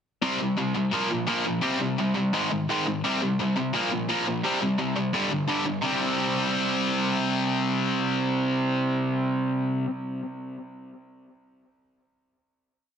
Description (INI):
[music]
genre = punk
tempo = 171 BPM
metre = 4/4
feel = straight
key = unclear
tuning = A4 = 440 Hz
[part]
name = distorted electric guitar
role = solo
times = 0.2-9.9 s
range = G2 to C4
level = -24 LUFS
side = equal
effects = overdrive, tape echo
[sound]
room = moderate studio reverb, RT60 0.8 s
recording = heavily compressed radio sound, multiband compression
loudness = -23 LUFS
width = side -8 dB against mid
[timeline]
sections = 0.2-5.8 verse; 5.8-8.6 final chord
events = none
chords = 0.2 C5; 0.9 Bb5; 1.6 C5; 2.3 Ab5; 3.0 C5; 3.7 Bb5; 4.4 C5; 5.1 G5; 5.8 C5